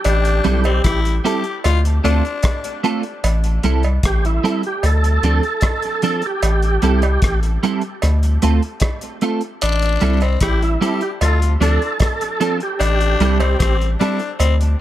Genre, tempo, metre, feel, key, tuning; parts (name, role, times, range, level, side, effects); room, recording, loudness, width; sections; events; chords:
roots reggae; 75 BPM; 4/4; straight; A minor; A4 = 440 Hz
overdriven tonewheel organ; melody; 0.0-13.8 s; E4 to A4; -23 LUFS; right 2 dB; chorus vibrato, fast rotary speaker, dub echo
raspy tenor saxophone; second line; 0.0-2.8, 9.6-14.6 s; C4 to G4; -23 LUFS; left 6 dB; dub echo
cloth-damped thuddy drum kit; drums; 0.0-14.8 s; hi-hat, kick drum, rim click; -22 LUFS; left 1 dB
soft dub sub bass; bass; 0.1-14.8 s; A1 to D2; -16 LUFS; equal
cowbell and jawbone-type rattle; percussion; 0.1-14.6 s; -27 LUFS; right 5 dB
clean electric guitar; accompaniment; 0.4-14.2 s; F3 to A4; -22 LUFS; right 4 dB; ensemble chorus, dub echo
studio reverb; -15 LUFS; side -13 dB against mid
0.0-14.8 A section
0.0 Am7; 1.6 Dm7; 3.2 Am7; 4.8 Dm7; 6.4 Am7; 8.0 Dm7; 9.6 Am7; 11.2 Dm7; 12.8 Am7